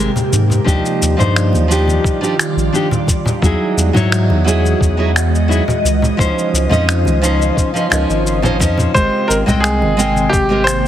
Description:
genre	sunset chillout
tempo	87 BPM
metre	4/4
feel	straight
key	Ab major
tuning	A4 = 439 Hz
part	nylon-string guitar	accompaniment	0.0-10.6 s	F3 to G5	-17 LUFS	equal	auto-pan, low-pass filter, tape echo
part	ethereal airy pad	sustained chords	0.0-10.9 s	C3 to G5	-20 LUFS	equal	ensemble chorus, built-in reverb, phaser
part	round analog bass	bass	0.0-10.9 s	Ab1 to Ab2	-16 LUFS	equal	none
part	electronic cabasa and finger snaps	drums	0.2-10.8 s	none	-21 LUFS	left 1 dB	none
part	congas	percussion	0.2-10.3 s	none	-21 LUFS	left 2 dB	none
part	electronic kick drum	drums	0.7-10.5 s	none	-16 LUFS	equal	none
part	bright baby grand piano	melody	8.9-10.9 s	G4 to C5	-16 LUFS	equal	tape echo
room	light reverb, studio ambience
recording	heavily compressed radio sound, multiband compression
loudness	-12 LUFS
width	side -11 dB against mid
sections	0.0-10.9 A section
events	none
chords	0.0 Abmaj9; 0.7 Ebmaj9; 3.1 Emaj9; 5.8 Dbmaj9; 8.9 Abmaj9

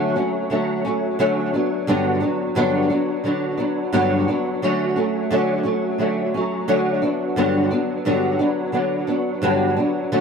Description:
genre	indie pop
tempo	87 BPM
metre	4/4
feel	swing 55% on 16ths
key	unclear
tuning	A4 = 440 Hz
part	flamenco guitar	solo	0.0-10.2 s	G2 to D4	-18 LUFS	equal	ensemble chorus, warbly pitch drift, tape echo
room	wet small room reverb, RT60 0.5 s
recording	none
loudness	-18 LUFS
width	side -6 dB against mid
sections	0.0-10.2 A section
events	none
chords	0.0 Dmaj7; 1.5 Gmaj7; 4.6 Dmaj7; 7.0 Gmaj7

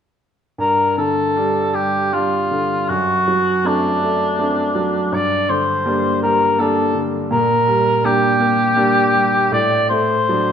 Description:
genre	classical, romantic duo for cor anglais and grand piano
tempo	80 BPM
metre	3/4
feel	rubato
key	G minor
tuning	A4 = 439 Hz
part	warm cor anglais	melody	0.6-10.5 s	D4 to D5	-16 LUFS	equal	none
part	bright grand piano	accompaniment	0.6-10.5 s	F#2 to D4	-19 LUFS	equal	none
room	wet recital hall reverb, RT60 1.6 s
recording	none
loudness	-15 LUFS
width	side -8 dB against mid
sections	0.6-10.5 A section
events	none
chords	0.6 G5; 2.9 D7/F#; 5.1 Gm; 7.3 Gm/Bb; 9.5 D7/A

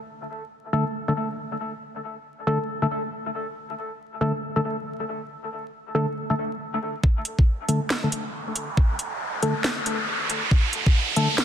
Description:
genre	deep dubstep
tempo	138 BPM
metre	4/4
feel	swing 62% on 16ths, half-time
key	unclear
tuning	A4 = 441 Hz
part	percussive organ stab	stabs	0.7-11.3 s	D3 to A4	-26 LUFS	left 1 dB	chorus, dub echo
part	electronic kick drum	drums	7.0-10.9 s	none	-18 LUFS	equal	none
part	riser	sound effects	8.2-11.4 s	none	-27 LUFS	right 2 dB	none
part	garage drum kit	drums	7.3-11.4 s	hi-hat, snare drum	-26 LUFS	right 1 dB	none
room	moderate echo chamber reverb, RT60 2.1 s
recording	dense, heavily limited modern master, vinyl crackle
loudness	-23 LUFS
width	side -9 dB against mid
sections	0.0-7.0 A section; 7.0-11.4 B section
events	build-up 7.0-11.4; filter sweep on synth stab 7.0-11.4; riser 8.2-11.4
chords	0.0 D5

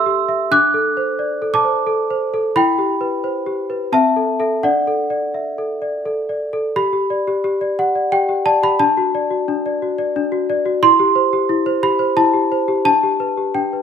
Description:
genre	classical, lullaby for celesta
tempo	88 BPM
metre	3/4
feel	straight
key	G major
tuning	A4 = 440 Hz
part	worn celesta	solo	0.0-13.8 s	C4 to F#6	-15 LUFS	equal	none
room	moderate recital hall reverb, RT60 1.4 s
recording	minimal, uncompressed stereo recording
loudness	-15 LUFS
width	side -7 dB against mid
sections	0.0-6.8 A section; 6.8-13.8 B section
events	none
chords	0.0 Am7/C; 0.5 D7; 2.6 Em; 3.9 Am/C; 4.6 D; 6.8 G; 8.8 D; 10.8 C/E; 12.9 G/D

